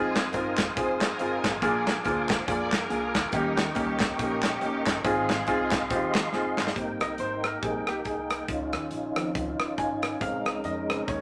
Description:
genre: uptempo gospel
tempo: 140 BPM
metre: 4/4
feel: swing 58% on 8ths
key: Ab major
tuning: A4 = 440 Hz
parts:
  - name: warm studio string section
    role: melody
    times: 0.0-6.3 s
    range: G3 to D5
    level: -36 LUFS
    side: equal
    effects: none
  - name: warm baby grand piano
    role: accompaniment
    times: 0.0-11.2 s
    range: Ab2 to Ab5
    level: -32 LUFS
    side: equal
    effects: none
  - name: tonewheel organ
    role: sustained chords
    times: 0.0-11.2 s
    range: Eb3 to Eb6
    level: -35 LUFS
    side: equal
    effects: slow rotary speaker, chorus vibrato
  - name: upright bass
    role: bass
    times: 0.0-11.2 s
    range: F1 to F2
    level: -44 LUFS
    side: equal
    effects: none
  - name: modern studio drum kit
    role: drums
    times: 0.2-11.2 s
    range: hi-hat, kick drum, rim click, snare drum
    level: -32 LUFS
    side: equal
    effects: none
  - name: group handclap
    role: percussion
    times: 0.2-6.7 s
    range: none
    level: -37 LUFS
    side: equal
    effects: none
  - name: dark French horn section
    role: sustained chords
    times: 6.8-11.2 s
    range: Eb3 to Bb4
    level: -45 LUFS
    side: equal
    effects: none
room: wet studio ambience, RT60 0.5 s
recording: none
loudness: -28 LUFS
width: mono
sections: 0.0-6.8 A section; 6.8-11.2 B section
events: drum fill 6.3-6.8; grand piano solo 6.8-11.2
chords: 0.0 Fm7; 1.6 Bb7; 3.3 Eb7; 5.0 Ab6; 6.8 Abmaj9; 8.5 Dbmaj9; 10.2 Bbm9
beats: 0.34 0.77 1.19 | 1.62 2.05 2.48 2.90 | 3.33 3.76 4.19 4.62 | 5.05 5.47 5.90 6.33 | 6.76 7.19 7.62 8.05 | 8.48 8.92 9.35 9.78 | 10.21 10.64 11.07

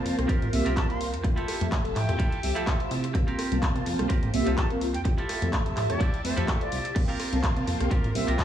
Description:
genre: filtered disco house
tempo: 126 BPM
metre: 4/4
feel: swing 54% on 16ths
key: C mixolydian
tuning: A4 = 440 Hz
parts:
  - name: mellow synth brass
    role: accompaniment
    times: 0.0-8.4 s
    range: F3 to A5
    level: -31 LUFS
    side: equal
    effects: chorus, phaser, sidechain pumping
  - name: phased string machine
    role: sustained chords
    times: 0.0-8.4 s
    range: F4 to A5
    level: -37 LUFS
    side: left 1 dB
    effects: ensemble chorus, phaser, sidechain pumping
  - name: clean electric guitar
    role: riff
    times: 0.0-8.4 s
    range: C4 to Bb4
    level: -35 LUFS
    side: right 2 dB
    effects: sidechain pumping
  - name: plucky analog bass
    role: bass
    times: 0.0-8.4 s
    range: F1 to C3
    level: -29 LUFS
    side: equal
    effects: sidechain pumping
  - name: house drum kit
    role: drums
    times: 0.1-8.4 s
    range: crash cymbal, handclaps, hi-hat, rim click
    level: -34 LUFS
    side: left 1 dB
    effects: sidechain pumping on hats, studio ambience, sidechain pumping on cymbals
  - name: electronic kick drum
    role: drums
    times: 0.3-8.4 s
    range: none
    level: -26 LUFS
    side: equal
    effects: studio ambience
  - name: bright reedy silver concert flute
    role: melody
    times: 0.5-8.4 s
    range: C5 to C6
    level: -37 LUFS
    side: right 2 dB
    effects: sidechain pumping, digital delay
room: light reverb, digital ambience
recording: small room reverb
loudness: -24 LUFS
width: side -10 dB against mid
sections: 0.0-8.4 A section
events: none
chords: 0.0 C7sus4; 1.2 Fmaj9; 3.1 C7sus4; 5.1 Fmaj9; 7.0 C7sus4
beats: 0.29 0.77 | 1.25 1.72 2.20 2.67 | 3.15 3.63 4.10 4.58 | 5.05 5.53 6.01 6.48 | 6.96 7.44 7.91 8.39

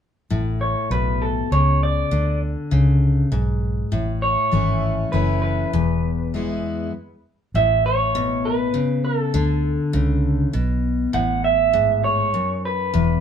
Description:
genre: honky-tonk and classic country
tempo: 100 BPM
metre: 3/4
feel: straight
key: A major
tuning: A4 = 440 Hz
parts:
  - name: picked steel-string acoustic guitar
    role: accompaniment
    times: 0.3-13.2 s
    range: E2 to E4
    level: -22 LUFS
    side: left 3 dB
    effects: none
  - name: vintage muted fingered electric bass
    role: bass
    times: 0.3-13.2 s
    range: E1 to D2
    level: -22 LUFS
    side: right 1 dB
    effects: none
  - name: electric guitar through a small old amp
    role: melody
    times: 0.6-13.2 s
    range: A4 to F#5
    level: -21 LUFS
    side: right 2 dB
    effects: none
room: moderate studio reverb, RT60 0.8 s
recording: minimal, uncompressed stereo recording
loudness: -18 LUFS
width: side -8 dB against mid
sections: 0.3-7.5 A section; 7.5-13.2 B section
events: stop 6.9-7.5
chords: 0.3 A; 2.1 Bm69; 3.9 A; 5.7 E; 7.5 A; 9.3 D5; 11.1 A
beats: | 0.32 0.92 1.52 | 2.12 2.72 3.33 | 3.93 4.53 5.13 | 5.73 6.33 6.94 | 7.54 8.14 8.74 | 9.34 9.94 10.54 | 11.14 11.75 12.35 | 12.95

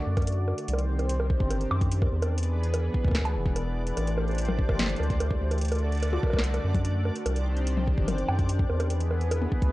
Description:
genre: IDM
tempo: 146 BPM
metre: 4/4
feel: straight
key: unclear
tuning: A4 = 440 Hz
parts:
  - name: warm analog pad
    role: sustained chords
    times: 0.0-9.7 s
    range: D3 to D5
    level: -33 LUFS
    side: equal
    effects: chorus, vintage 12-bit sampler grit
  - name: backwards swelling texture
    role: texture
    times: 0.1-9.7 s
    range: D4 to D5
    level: -40 LUFS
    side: left 2 dB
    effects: built-in reverb
  - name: round analog bass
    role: bass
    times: 0.1-9.7 s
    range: E1 to F#2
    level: -27 LUFS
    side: equal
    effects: none
  - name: booming analog drum machine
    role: drums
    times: 0.2-9.7 s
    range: bongos, hi-hat, snare drum, toms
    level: -32 LUFS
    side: equal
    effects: none
  - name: electronic kick drum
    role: drums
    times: 0.2-9.7 s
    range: none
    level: -27 LUFS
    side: equal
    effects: none
room: little or no reverb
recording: dry, gritty hardware recording, transformer saturation, cassette tape, nothing above 10.5 kHz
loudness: -24 LUFS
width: side -18 dB against mid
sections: 0.0-9.7 A section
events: none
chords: 0.0 D; 0.7 Cm; 2.3 E; 4.0 Am7; 5.6 D; 7.3 Cm; 8.9 E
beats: 0.27 | 0.68 1.09 1.50 1.92 | 2.33 2.74 3.15 3.56 | 3.97 4.38 4.79 5.20 | 5.61 6.03 6.44 6.85 | 7.26 7.67 8.08 8.49 | 8.90 9.31

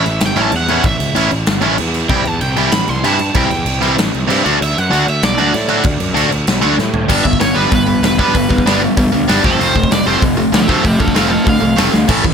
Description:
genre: punk rock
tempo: 192 BPM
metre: 4/4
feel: straight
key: unclear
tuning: A4 = 440 Hz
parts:
  - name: overdriven semi-hollow guitar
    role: melody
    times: 0.0-12.1 s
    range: G4 to C6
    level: -20 LUFS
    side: right 2 dB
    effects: ping-pong delay
  - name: distorted electric guitar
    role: riff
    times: 0.0-12.3 s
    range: A2 to F#4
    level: -14 LUFS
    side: equal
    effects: overdrive
  - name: fuzz picked electric bass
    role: bass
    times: 0.0-12.3 s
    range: E1 to A2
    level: -19 LUFS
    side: equal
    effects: overdrive
  - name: big rock drum kit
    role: drums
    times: 0.1-12.3 s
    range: crash cymbal, hi-hat, kick drum, snare drum, toms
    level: -17 LUFS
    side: equal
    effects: none
room: little or no reverb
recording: none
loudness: -11 LUFS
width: side -7 dB against mid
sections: 0.0-7.1 A section; 7.1-12.3 B section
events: half time 0.0-7.1; drum fill 6.8-7.1, 11.9; overdriven electric guitar solo 7.1-12.3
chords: 0.0 A; 2.1 C; 4.4 D; 7.1 G; 9.4 F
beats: 0.22 0.53 | 0.85 1.16 1.47 1.79 | 2.10 2.41 2.73 3.04 | 3.35 3.67 3.98 4.29 | 4.60 4.92 5.23 5.54 | 5.85 6.17 6.48 6.79 | 7.10 7.41 7.73 8.04 | 8.35 8.66 8.97 9.28 | 9.60 9.91 10.22 10.53 | 10.84 11.15 11.47 11.78 | 12.09

